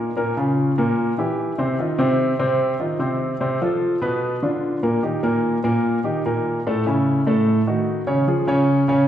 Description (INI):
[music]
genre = jazz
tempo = 148 BPM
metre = 4/4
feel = straight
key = unclear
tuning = A4 = 440 Hz
[part]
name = warm baby grand piano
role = solo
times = 0.0-9.1 s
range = A2 to Db5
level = -18 LUFS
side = equal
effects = none
[sound]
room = wet recital hall reverb, RT60 1.5 s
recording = recorded in a church or concert hall, nothing above 10.4 kHz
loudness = -18 LUFS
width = side -10 dB against mid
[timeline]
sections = 0.0-9.1 A section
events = none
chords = 0.2 Bbm; 1.0 C7; 1.8 F5; 3.4 F; 4.2 Bb; 5.0 Eb/Bb; 6.7 A; 7.5 Gbm6/A; 8.3 Db